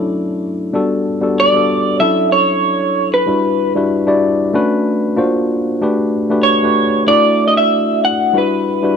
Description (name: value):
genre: soul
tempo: 95 BPM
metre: 4/4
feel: swing 54% on 16ths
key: D major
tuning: A4 = 440 Hz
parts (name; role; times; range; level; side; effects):
- tine electric piano; accompaniment; 0.0-9.0 s; F#3 to D5; -15 LUFS; left 1 dB; overdrive
- electric guitar through a small old amp; melody; 1.4-9.0 s; B4 to F#5; -14 LUFS; right 1 dB; wide subtle chorus
room: light reverb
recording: none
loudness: -12 LUFS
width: side -6 dB against mid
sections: 0.7-9.0 A section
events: none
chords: 0.0 Dmaj7; 0.7 Gmaj9; 2.0 Dmaj9; 3.3 Em9; 4.5 Bm9; 5.2 D7alt; 5.8 Gmaj9; 7.1 Dadd9; 8.3 Em9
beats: 0.10 | 0.73 1.37 2.00 2.64 | 3.27 3.91 4.54 5.17 | 5.81 6.44 7.07 7.71 | 8.34